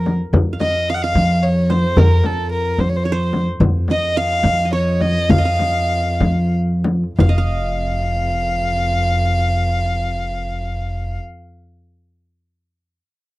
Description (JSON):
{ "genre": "Arabic maqam ensemble", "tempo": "58-73 BPM (dotted quarters)", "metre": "6/8", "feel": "straight", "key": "F maqam hijaz", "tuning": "A4 = 439 Hz", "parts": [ { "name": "dark violin", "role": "melody", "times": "0.0-11.2 s", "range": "A4 to Gb5+24c", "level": "-21 LUFS", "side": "equal", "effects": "none" }, { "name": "qanun", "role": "second line", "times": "0.0-11.4 s", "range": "Bb4 to F5", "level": "-27 LUFS", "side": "right 4 dB", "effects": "none" }, { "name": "upright bass", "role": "bass", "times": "0.0-11.2 s", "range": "F1 to F3", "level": "-19 LUFS", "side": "equal", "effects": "none" }, { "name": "dark double bass", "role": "drone", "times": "0.0-11.2 s", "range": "F2", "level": "-24 LUFS", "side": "equal", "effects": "none" }, { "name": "frame drum", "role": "percussion", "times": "0.1-7.5 s", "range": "none", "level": "-18 LUFS", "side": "left 2 dB", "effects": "none" } ], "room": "little or no reverb", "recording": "dry, close 1970s-style studio recording", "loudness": "-15 LUFS", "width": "side -18 dB against mid", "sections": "0.0-7.2 A section; 7.2-11.3 B section", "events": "slowing down 3.6-7.2", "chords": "none" }